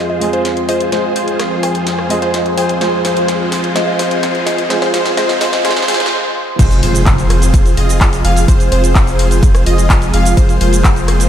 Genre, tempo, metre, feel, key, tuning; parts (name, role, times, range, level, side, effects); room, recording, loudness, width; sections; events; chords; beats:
EDM, festival progressive house; 127 BPM; 4/4; straight; F minor; A4 = 439 Hz
mallet-like synth pluck; melody; 0.0-6.1 s; C5 to Ab5; -22 LUFS; equal; chorus, phaser, cassette tape, ping-pong delay
warm grand piano; accompaniment; 0.0-6.6 s; Ab3 to Ab4; -22 LUFS; right 2 dB; sidechain pumping, ping-pong delay
lush unison pad; sustained chords; 0.0-11.3 s; F2 to Ab4; -21 LUFS; equal; chorus, sidechain pumping
plucky unison lead; arpeggios; 0.0-11.3 s; C5 to F5; -21 LUFS; left 1 dB; wide subtle chorus, sidechain pumping, ping-pong delay
dense compressed supersaw; riff; 0.0-11.3 s; F4 to F5; -19 LUFS; equal; sidechain pumping, low-pass filter, ping-pong delay
riser and impact; sound effects; 0.2-8.5 s; -24 LUFS; equal
house drum kit; drums; 0.2-11.3 s; crash cymbal, handclaps, hi-hat, rim click, shaker, snare drum; -20 LUFS; equal; high-pass filter on hats, high-pass filter on snare, high-pass filter on cymbals, high-pass filter on perc
saturated sub bass; bass; 6.6-11.3 s; F1; -14 LUFS; equal; sidechain pumping
electronic kick drum; drums; 6.6-10.9 s; -11 LUFS; equal
moderate church reverb, RT60 2.9 s; dreamy mix soaked in reverb, high-pass filter; -11 LUFS; side -10 dB against mid
0.0-6.6 A section; 6.6-11.3 B section
build-up 0.0-6.6; drum fill 0.0-6.1; filter sweep on digital synth lead 0.0-6.6; filter sweep 0.0-6.6; riser 0.2-6.1; stop 6.1-6.6; drop 6.6-11.3; impact 6.6-8.5
0.0 Fm
0.45 | 0.92 1.40 1.87 2.34 | 2.81 3.29 3.76 4.23 | 4.70 5.17 5.65 6.12 | 6.59 7.07 7.54 8.01 | 8.48 8.96 9.43 9.90 | 10.37 10.84